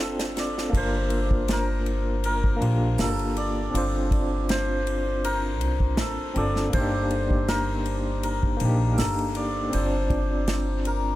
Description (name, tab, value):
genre	trip hop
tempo	80 BPM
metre	4/4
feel	swing 54% on 16ths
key	G minor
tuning	A4 = 441 Hz
part	hammered dulcimer	melody	0.0-11.2 s	A4 to D5	-30 LUFS	left 1 dB	dub echo
part	overdriven tine electric piano	accompaniment	0.0-11.2 s	Bb3 to D5	-28 LUFS	equal	tremolo, tape echo
part	upright bass	bass	0.0-11.2 s	G1 to C2	-27 LUFS	equal	tube saturation
part	unplugged drum kit	drums	0.2-11.0 s	crash cymbal, hi-hat, kick drum, ride cymbal, snare drum	-29 LUFS	equal	high-pass filter on kick, high-pass filter on cymbals, high-pass filter on hats, high-pass filter on snare, high-pass filter on room
room	small room reverb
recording	echo-heavy mix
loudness	-22 LUFS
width	side -15 dB against mid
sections	0.7-11.2 A section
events	none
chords	0.0 Dm7/G; 0.7 Gm7; 3.7 Bbmaj9/G; 6.7 Cm7/G; 9.7 Dm7/G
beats	| 0.73 1.48 2.23 2.98 | 3.73 4.48 5.23 5.98 | 6.73 7.48 8.23 8.98 | 9.73 10.48